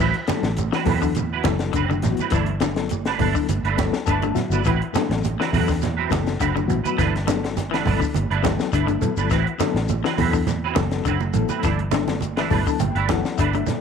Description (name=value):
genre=afrobeat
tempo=103 BPM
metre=4/4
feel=straight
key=A dorian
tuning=A4 = 440 Hz
part: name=electric guitar at the edge of break-up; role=arpeggios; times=0.0-13.8 s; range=D3 to E3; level=-27 LUFS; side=left 12 dB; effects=none
part: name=semi-hollow electric guitar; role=stabs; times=0.0-13.7 s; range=F#3 to B4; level=-27 LUFS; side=right 12 dB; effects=ensemble chorus
part: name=fingered electric bass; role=bass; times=0.0-13.7 s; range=F#1 to E2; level=-24 LUFS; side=right 1 dB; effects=none
part: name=congas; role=percussion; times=0.0-13.8 s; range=none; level=-27 LUFS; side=right 10 dB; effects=none
part: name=shekere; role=percussion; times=0.0-13.8 s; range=none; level=-33 LUFS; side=left 4 dB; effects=none
part: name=compact cocktail drum kit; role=drums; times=0.1-13.8 s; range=hi-hat, kick drum, snare drum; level=-27 LUFS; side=left 3 dB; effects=none
part: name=bright reed electric piano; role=accompaniment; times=0.3-13.8 s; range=F#3 to A5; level=-28 LUFS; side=left 13 dB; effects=tremolo
room=light reverb, studio ambience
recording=1960s-style stereo with parts hard left and right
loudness=-19 LUFS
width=side -6 dB against mid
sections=0.0-13.8 A section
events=reed electric piano fill 3.8-4.7, 12.2-13.8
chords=0.0 Am69; 2.3 G69; 4.7 Am69; 7.0 G69; 9.3 Am69; 11.6 G69